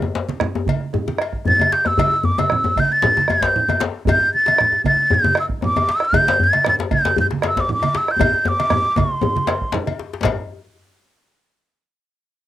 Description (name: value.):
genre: west african traditional, West African drum ensemble.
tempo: 116 BPM.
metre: 4/4.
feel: straight.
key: unclear.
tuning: A4 = 436 Hz.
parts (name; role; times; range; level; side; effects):
congas; percussion; 0.0-10.5 s; none; -24 LUFS; right 4 dB; none.
djembe; percussion; 0.0-10.5 s; none; -27 LUFS; left 4 dB; none.
djembe; percussion; 0.0-10.5 s; none; -22 LUFS; left 3 dB; none.
bombo; percussion; 0.4-10.5 s; none; -24 LUFS; right 3 dB; none.
cowbell; percussion; 0.7-10.5 s; none; -27 LUFS; left 8 dB; none.
breathy mellow silver concert flute; melody; 1.5-9.7 s; C6 to A6; -17 LUFS; equal; cassette tape.
room: light reverb.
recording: home recording on cassette.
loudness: -15 LUFS.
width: side -13 dB against mid.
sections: 0.0-10.2 A section; 10.2-12.3 B section.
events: speeding up 0.0-12.3; drum fill 8.2-10.2.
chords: none.